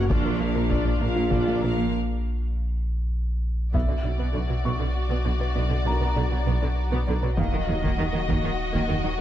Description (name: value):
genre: cinematic, hybrid orchestral and electronic film score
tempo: 66 BPM (dotted quarters)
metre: 6/8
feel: straight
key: B harmonic minor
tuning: A4 = 441 Hz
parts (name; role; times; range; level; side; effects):
- warm symphonic violin section; second line; 0.0-9.2 s; F#4 to E#5; -35 LUFS; left 4 dB; none
- rich studio viola section; accompaniment; 0.0-9.2 s; D3 to E#4; -33 LUFS; right 1 dB; none
- mellow French horn section; sustained chords; 0.0-9.2 s; F#3 to F#4; -33 LUFS; left 3 dB; none
- smooth gliding synth bass; riff; 0.0-1.9 s; A#2 to A#3; -32 LUFS; right 2 dB; none
- punchy sub bass; bass; 0.0-9.2 s; D#1 to B1; -27 LUFS; equal; none
- felt-muted upright piano; texture; 0.0-9.2 s; A#4 to E6; -36 LUFS; equal; digital delay
- soft round pluck; arpeggios; 0.1-9.2 s; D#3 to B4; -36 LUFS; right 2 dB; chorus, digital delay
- dark symphonic double bass section; bass; 0.1-9.0 s; A#1 to D#2; -32 LUFS; right 3 dB; none
- mellow tuba; bass; 0.1-9.0 s; A#1 to D#2; -34 LUFS; right 3 dB; none
- rich symphonic cello section; bass; 0.1-9.2 s; A#2 to D#3; -32 LUFS; right 2 dB; none
- taiko ensemble; drums; 0.1-9.2 s; none; -29 LUFS; equal; none
- warm symphonic violin section; melody; 3.7-9.2 s; D5 to D#5; -34 LUFS; left 4 dB; none
room: light reverb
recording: dark, warm production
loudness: -22 LUFS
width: side -11 dB against mid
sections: 0.0-3.7 A section; 3.7-9.2 B section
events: break 1.9-3.7; drum fill 3.3-3.7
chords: 0.1 A#; 3.7 Bm; 7.4 D#m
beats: | 0.10 1.01 | 1.92 2.83 | 3.74 4.65 | 5.56 6.47 | 7.38 8.29 | 9.20